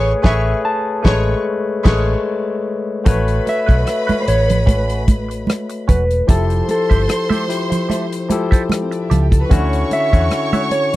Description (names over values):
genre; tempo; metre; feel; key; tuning
lush 1970s-style soul; 74 BPM; 4/4; swing 54% on 16ths; A major; A4 = 440 Hz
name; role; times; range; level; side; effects
mellow electric guitar; melody; 0.0-11.0 s; A4 to A5; -20 LUFS; equal; slapback echo
warm studio violin section; second line; 0.0-11.0 s; C4 to C#6; -26 LUFS; right 1 dB; none
barky tine electric piano; accompaniment; 0.0-11.0 s; D3 to E5; -20 LUFS; left 3 dB; overdrive
direct-recorded clean electric guitar; riff; 0.0-11.0 s; C#4 to E5; -28 LUFS; right 6 dB; wah
vintage muted fingered electric bass; bass; 0.0-10.3 s; E1 to E2; -18 LUFS; equal; none
damped 70s drum kit; drums; 0.2-11.0 s; crash cymbal, hi-hat, kick drum, rim click, snare drum; -14 LUFS; equal; none
congas; percussion; 3.1-10.9 s; none; -21 LUFS; right 3 dB; none
room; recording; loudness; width
light reverb; dry, close 1970s-style studio recording; -14 LUFS; side -16 dB against mid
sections
0.0-3.1 A section; 3.1-11.0 B section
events
band accent 0.0-3.1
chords
0.0 Amaj9; 3.1 A69; 6.3 Fmaj9; 9.5 Dmaj9